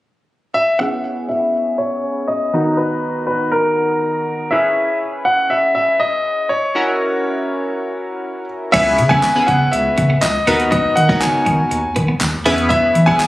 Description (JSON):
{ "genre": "dance-pop", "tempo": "121 BPM", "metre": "4/4", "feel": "straight", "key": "C# dorian", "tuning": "A4 = 440 Hz", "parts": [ { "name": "clear grand piano", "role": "melody", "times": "0.5-13.3 s", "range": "A#4 to G#5", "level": "-16 LUFS", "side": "left 1 dB", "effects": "low-pass filter, digital delay" }, { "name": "chorused retro synth keys", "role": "accompaniment", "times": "0.8-13.2 s", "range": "D#3 to A#5", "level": "-20 LUFS", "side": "equal", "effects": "sidechain pumping, low-pass filter" }, { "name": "twelve-string electric guitar", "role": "riff", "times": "8.7-13.2 s", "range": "A#3 to E4", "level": "-22 LUFS", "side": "right 1 dB", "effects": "wide subtle chorus" }, { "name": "saturated sub bass", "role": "bass", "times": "8.7-13.3 s", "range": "F#1 to E3", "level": "-19 LUFS", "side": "equal", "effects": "sidechain pumping" }, { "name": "pop drum kit", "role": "drums", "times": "8.7-13.3 s", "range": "crash cymbal, handclaps, hi-hat, kick drum, snare drum", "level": "-22 LUFS", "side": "equal", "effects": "none" }, { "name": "tambourine", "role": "percussion", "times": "9.2-13.3 s", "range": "none", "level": "-29 LUFS", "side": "left 1 dB", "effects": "none" } ], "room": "light reverb, digital ambience", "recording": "recorded on a phone in the room, club reverb, compression", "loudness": "-14 LUFS", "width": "side -16 dB against mid", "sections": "0.8-8.7 A section; 8.7-13.3 B section", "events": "filter sweep 0.8-8.7", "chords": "0.0 N.C.; 0.8 C#m7; 2.5 Bmaj7/D#; 4.5 E6; 6.8 F#7; 8.7 C#m7; 10.5 Bmaj7; 12.5 E6" }